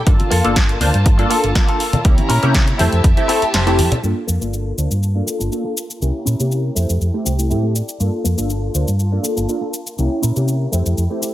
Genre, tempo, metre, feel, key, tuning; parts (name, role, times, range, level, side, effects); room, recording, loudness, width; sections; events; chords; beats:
filtered disco house; 121 BPM; 4/4; straight; G dorian; A4 = 440 Hz
warm studio violin section; sustained chords; 0.0-11.3 s; Bb3 to Bb5; -27 LUFS; equal; sidechain pumping, low-pass filter
funky polysynth comp; accompaniment; 0.1-11.3 s; A3 to C5; -22 LUFS; equal; chorus, phaser, vintage 12-bit sampler grit, sidechain pumping, low-pass filter
hollow-body short-scale fingered electric bass; bass; 0.1-11.1 s; F1 to C3; -18 LUFS; equal; sidechain pumping, low-pass filter
electronic kick drum; drums; 0.1-3.1 s; -14 LUFS; equal
punchy analog drum machine; drums; 0.1-11.3 s; cabasa, hi-hat, snare drum; -23 LUFS; equal; sidechain pumping on hats, sidechain pumping on perc
tube shaker and congas; percussion; 0.1-4.0 s; -22 LUFS; left 1 dB; sidechain pumping on perc, low-pass filter on perc
direct-recorded clean electric guitar; riff; 0.3-11.3 s; A3 to G5; -24 LUFS; left 1 dB; phaser, sidechain pumping, low-pass filter
digital ambience; -15 LUFS; side -14 dB against mid
0.0-4.0 A section; 4.0-11.3 B section
clean electric guitar fill 3.3-4.0, 7.0-8.0; kick drops out 3.5-4.0; band accent 3.5; filter sweep 4.0-11.3
0.1 Gm9; 2.0 C7b9; 2.8 Fmaj9; 4.0 Gm9; 6.0 C7b9; 6.8 Fmaj9; 8.0 Gm9; 10.0 C7b9; 10.7 Fmaj9
| 0.07 0.56 1.06 1.55 | 2.05 2.55 3.04 3.54 | 4.03 4.53 5.03 5.52 | 6.02 6.51 7.01 7.50 | 8.00 8.50 8.99 9.49 | 9.98 10.48 10.98